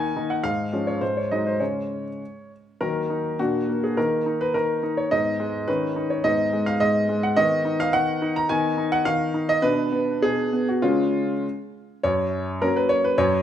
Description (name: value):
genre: classical-period piano sonatina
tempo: 105 BPM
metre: 2/4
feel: rubato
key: Eb minor, F# major from 7.4 s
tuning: A4 = 443 Hz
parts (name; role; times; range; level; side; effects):
- clear grand piano; solo; 0.0-13.4 s; F#2 to A#5; -21 LUFS; equal; none
room: moderate recital hall reverb, RT60 1.5 s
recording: none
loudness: -21 LUFS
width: side -10 dB against mid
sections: 0.0-2.8 A section; 2.8-12.0 B section; 12.0-13.4 C section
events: none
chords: 0.4 Db/Ab; 1.0 Ab5; 1.6 Db5; 2.8 Ebm; 3.4 Bb; 4.0 Eb5; 5.1 Abm; 5.7 Badd9/D#; 6.2 Abm; 7.4 B/D#; 9.6 Bm; 10.8 C#; 12.0 F#